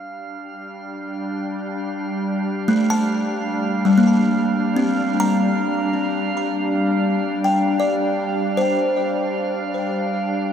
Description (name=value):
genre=ambient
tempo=77 BPM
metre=4/4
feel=straight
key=G minor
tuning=A4 = 439 Hz
part: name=organ-like drone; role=drone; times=0.3-10.5 s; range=G3 to D4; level=-23 LUFS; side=left 1 dB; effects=ensemble chorus, built-in reverb
part: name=drifting glass-harmonics texture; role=texture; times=0.0-10.5 s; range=F5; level=-28 LUFS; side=right 4 dB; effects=chorus, built-in reverb, shimmer reverb
part: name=buzzing kalimba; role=arpeggios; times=2.7-10.5 s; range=G3 to Bb5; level=-20 LUFS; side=left 1 dB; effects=tape echo, shimmer reverb
room=wet huge ambient reverb, RT60 8.9 s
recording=none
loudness=-18 LUFS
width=side -8 dB against mid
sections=0.0-10.5 A section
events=fade-in on synth texture 0.0-10.5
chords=0.0 Gm7